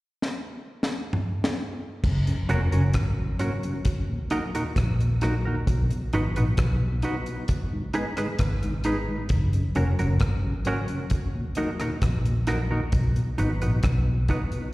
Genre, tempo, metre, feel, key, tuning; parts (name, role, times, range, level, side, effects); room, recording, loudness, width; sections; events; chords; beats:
roots reggae; 66 BPM; 4/4; straight; F# major; A4 = 438 Hz
deep reggae drum kit; drums; 0.2-14.7 s; crash cymbal, hi-hat, kick drum, rim click, snare drum, toms; -27 LUFS; equal
vintage muted fingered electric bass; bass; 2.0-14.3 s; E#1 to B1; -24 LUFS; equal
mellow tonewheel organ; accompaniment; 2.3-14.6 s; D#2 to D#4; -31 LUFS; left 1 dB; chorus vibrato, slow rotary speaker, tape echo, slapback echo
semi-hollow electric guitar; accompaniment; 2.5-14.4 s; C#4 to B4; -31 LUFS; right 2 dB; tremolo, tape echo, slapback echo
light reverb; live gig heard through the venue's PA, recital hall reverb; -23 LUFS; side -19 dB against mid
0.0-2.0 A section; 2.0-14.7 B section
drum fill 0.2-2.0
0.0 N.C.; 2.0 F#; 3.9 D#m; 5.7 B; 7.5 G#m; 9.3 F#; 11.1 D#m; 12.9 B
0.22 1.12 | 2.03 2.94 3.85 4.76 | 5.67 6.58 7.49 8.39 | 9.30 10.21 11.12 12.02 | 12.93 13.84